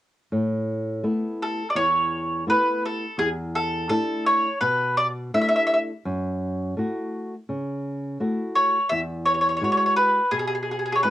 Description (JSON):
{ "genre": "italian folk, Italian serenade", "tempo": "84 BPM", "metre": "4/4", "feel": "straight", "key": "A major", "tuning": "A4 = 441 Hz", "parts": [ { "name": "flamenco guitar", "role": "accompaniment", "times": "0.3-11.1 s", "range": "E2 to F#4", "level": "-27 LUFS", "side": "equal", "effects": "none" }, { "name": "mandolin", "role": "melody", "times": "1.4-11.1 s", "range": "G#4 to E5", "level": "-20 LUFS", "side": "equal", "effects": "none" } ], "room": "light reverb", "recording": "home recording on cassette", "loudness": "-21 LUFS", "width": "side -13 dB against mid", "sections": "0.3-11.1 A section", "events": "none", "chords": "0.3 Asus2; 3.2 E7sus4; 6.0 F#m7; 8.9 Eadd9" }